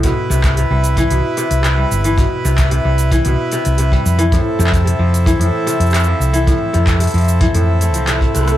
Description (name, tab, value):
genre	folktronica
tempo	112 BPM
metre	4/4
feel	straight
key	C major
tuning	A4 = 440 Hz
part	accordion	sustained chords	0.0-8.6 s	C4 to B4	-22 LUFS	right 2 dB	none
part	kora	arpeggios	0.0-8.6 s	A2 to A3	-19 LUFS	left 1 dB	digital delay
part	hollow-body short-scale fingered electric bass	bass	0.0-8.6 s	G1 to F2	-15 LUFS	equal	none
part	kick drum	drums	0.0-8.3 s	none	-18 LUFS	equal	none
part	organic electronic drum kit	drums	0.0-8.6 s	handclaps, hi-hat, rim click, shaker	-23 LUFS	equal	none
room	little or no reverb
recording	none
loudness	-12 LUFS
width	side -13 dB against mid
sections	0.0-8.6 A section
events	drum fill 8.3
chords	0.0 Cmaj7; 4.3 Fmaj7